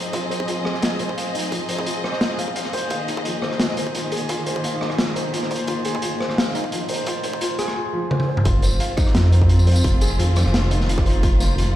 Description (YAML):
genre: half-time drum and bass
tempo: 173 BPM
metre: 4/4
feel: swing 53% on 16ths, half-time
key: F minor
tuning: A4 = 441 Hz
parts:
  - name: dark studio string section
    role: sustained chords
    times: 0.0-11.8 s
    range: Eb3 to Eb5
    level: -28 LUFS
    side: equal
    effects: sidechain pumping
  - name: felt-muted upright piano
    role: arpeggios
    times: 0.0-11.8 s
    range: F3 to F5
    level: -26 LUFS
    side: left 1 dB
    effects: low-pass filter, ping-pong delay
  - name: crunchy breakbeat drum kit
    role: drums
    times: 0.0-11.7 s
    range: hi-hat, rim click, snare drum, tambourine, toms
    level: -26 LUFS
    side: equal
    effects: none
  - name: electronic kick drum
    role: drums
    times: 0.1-11.3 s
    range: none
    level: -22 LUFS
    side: equal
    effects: distortion, overdrive, high-pass filter on kick
  - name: dark detuned saw bass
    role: bass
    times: 8.5-11.8 s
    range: F1 to F2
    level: -17 LUFS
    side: equal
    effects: none
room: light reverb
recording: played on a big sound system in a bare room, stone room reverb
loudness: -18 LUFS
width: side -13 dB against mid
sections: 0.0-8.5 A section; 8.5-11.8 B section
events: build-up 0.0-8.5; drum fill 8.1-8.5; drop 8.5-11.8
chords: 0.0 Fm7; 2.9 Ebsus4; 8.5 Fm7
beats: | 0.13 0.48 0.83 1.17 | 1.52 1.87 2.21 2.56 | 2.91 3.25 3.60 3.95 | 4.29 4.64 4.99 5.34 | 5.68 6.03 6.38 6.72 | 7.07 7.42 7.76 8.11 | 8.46 8.80 9.15 9.50 | 9.84 10.19 10.54 10.88 | 11.23 11.58